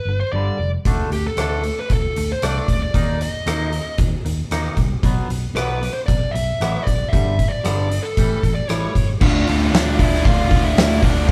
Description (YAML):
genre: quiet-loud alternative rock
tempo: 115 BPM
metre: 4/4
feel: straight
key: unclear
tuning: A4 = 440 Hz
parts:
  - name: fuzz lead guitar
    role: melody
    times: 0.0-11.3 s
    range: D4 to F5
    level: -27 LUFS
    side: equal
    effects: distortion
  - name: twangy electric guitar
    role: arpeggios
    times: 0.0-9.2 s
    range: G2 to Eb4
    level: -30 LUFS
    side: equal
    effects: phaser
  - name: fingered electric bass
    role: bass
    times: 0.1-11.3 s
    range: F1 to Eb2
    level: -25 LUFS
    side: equal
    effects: none
  - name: oversized low-tuned drum kit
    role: drums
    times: 0.9-11.3 s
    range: crash cymbal, hi-hat, kick drum, rim click, snare drum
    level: -22 LUFS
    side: equal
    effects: none
  - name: overdriven electric guitar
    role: riff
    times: 9.2-11.3 s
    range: D3 to F4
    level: -22 LUFS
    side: equal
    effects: none
room: light reverb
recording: band playing live in one room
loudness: -19 LUFS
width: mono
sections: 0.0-9.2 A section; 9.2-11.3 B section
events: none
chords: 0.0 G; 0.9 D5; 2.9 Eb5; 5.0 B5; 7.1 G5; 8.2 A5; 9.2 Dm